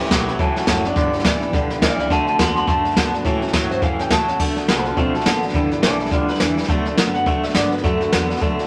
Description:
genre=rockabilly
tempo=209 BPM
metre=4/4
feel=swing 59% on 8ths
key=D major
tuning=A4 = 439 Hz
part: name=electric guitar through a small old amp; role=melody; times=0.0-8.7 s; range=C4 to C6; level=-25 LUFS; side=equal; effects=none
part: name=dark upright piano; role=accompaniment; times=0.0-8.7 s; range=C#5 to B5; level=-33 LUFS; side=equal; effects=none
part: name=picked steel-string acoustic guitar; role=accompaniment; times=0.0-8.7 s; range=G2 to F#4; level=-29 LUFS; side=equal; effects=none
part: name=twangy electric guitar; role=riff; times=0.0-8.7 s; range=G2 to B3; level=-26 LUFS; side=equal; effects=tremolo
part: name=upright bass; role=bass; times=0.0-8.7 s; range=F#1 to A2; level=-32 LUFS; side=equal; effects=none
part: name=jazz brush drum kit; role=drums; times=0.0-8.7 s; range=crash cymbal, hi-hat, kick drum, snare drum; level=-22 LUFS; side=equal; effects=none
room=moderate studio reverb, RT60 0.7 s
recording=none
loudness=-19 LUFS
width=mono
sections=0.0-4.4 A section; 4.4-8.7 B section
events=clean electric guitar solo 0.0-4.4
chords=0.0 A6; 1.0 G6; 2.1 D6; 3.3 A6; 4.4 D6; 5.5 G6; 6.7 D6

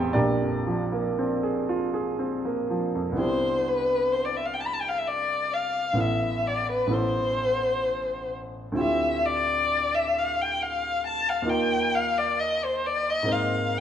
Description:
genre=classical, impressionist duo for violin and grand piano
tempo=57-68 BPM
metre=3/4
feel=rubato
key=unclear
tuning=A4 = 444 Hz
part: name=clear grand piano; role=accompaniment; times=0.0-13.8 s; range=A1 to C6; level=-27 LUFS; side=right 1 dB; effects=none
part: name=warm violin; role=melody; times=3.2-13.8 s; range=B4 to B5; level=-24 LUFS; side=left 2 dB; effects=none
room=wet recital hall reverb, RT60 1.4 s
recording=dark, warm production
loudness=-23 LUFS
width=side -9 dB against mid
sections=0.0-3.2 A section; 3.2-13.8 B section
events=none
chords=0.1 Bb9; 3.2 Cmaj9; 6.0 Amadd9; 8.8 Dm11; 11.5 Ebsus2; 13.3 Abadd9

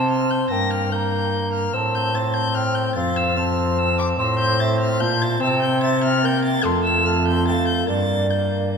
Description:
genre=classical, renaissance-style consort dance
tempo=146 BPM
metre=3/4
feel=straight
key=G dorian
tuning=A4 = 440 Hz
part: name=dark violin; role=melody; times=0.0-8.7 s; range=C6 to Bb6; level=-24 LUFS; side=left 3 dB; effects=none
part: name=mellow hollow tenor recorder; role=second line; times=0.0-8.8 s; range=D5 to C6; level=-26 LUFS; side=right 2 dB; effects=none
part: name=mellow bassoon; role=accompaniment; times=0.0-8.8 s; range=A3 to C4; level=-25 LUFS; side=left 3 dB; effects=none
part: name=warm cello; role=bass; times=0.0-8.8 s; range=F2 to C3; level=-22 LUFS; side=right 1 dB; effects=none
room=wet church reverb, RT60 3.2 s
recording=none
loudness=-18 LUFS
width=side -6 dB against mid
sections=0.0-8.8 A section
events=none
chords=0.0 C5; 0.5 Gm; 1.7 Am; 3.0 F; 4.2 Am; 5.4 C; 6.7 F; 7.9 Gm

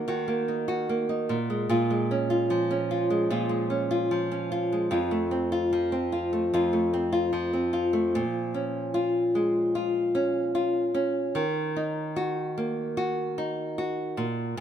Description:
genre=pop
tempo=74 BPM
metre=4/4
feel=straight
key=Bb minor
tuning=A4 = 440 Hz
part: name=nylon-string guitar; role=solo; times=0.0-14.6 s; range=F2 to Gb4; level=-24 LUFS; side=equal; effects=none
room=wet plate reverb, RT60 2.9 s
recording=none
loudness=-24 LUFS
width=side -9 dB against mid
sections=0.0-8.1 A section; 8.1-14.6 B section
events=none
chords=0.0 Ebm; 1.3 Bbm7; 4.9 F; 8.1 Bbm7; 11.3 Ebm

